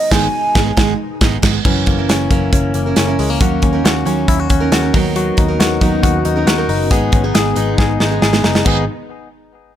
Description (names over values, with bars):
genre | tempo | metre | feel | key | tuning
jangly indie pop | 137 BPM | 4/4 | straight | G# minor | A4 = 440 Hz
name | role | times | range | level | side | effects
hollow clarinet-like synth lead | melody | 0.0-1.0 s | D#5 to G#5 | -19 LUFS | right 1 dB | chorus, analog delay
string machine, cellos | sustained chords | 0.0-1.6, 5.2-8.9 s | B2 to A#4 | -25 LUFS | left 2 dB | ensemble chorus
picked steel-string acoustic guitar | accompaniment | 0.1-8.8 s | G#2 to A#4 | -20 LUFS | right 9 dB | none
vintage muted picked electric bass | bass | 0.1-8.9 s | F#1 to D#2 | -19 LUFS | equal | none
modern studio drum kit | drums | 0.1-8.8 s | crash cymbal, hi-hat, kick drum, snare drum | -15 LUFS | equal | none
direct-recorded clean electric guitar | arpeggios | 1.7-8.8 s | E3 to G#4 | -19 LUFS | left 8 dB | none
room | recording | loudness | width
little or no reverb | none | -12 LUFS | side -10 dB against mid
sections
0.0-1.6 A section; 1.6-8.7 B section; 8.7-9.8 C section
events
band accent 0.0-1.6; drum fill 7.8-8.7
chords
0.0 G#m; 1.6 F#7; 3.4 D#m7; 4.9 Bmaj7/D#; 6.9 G#m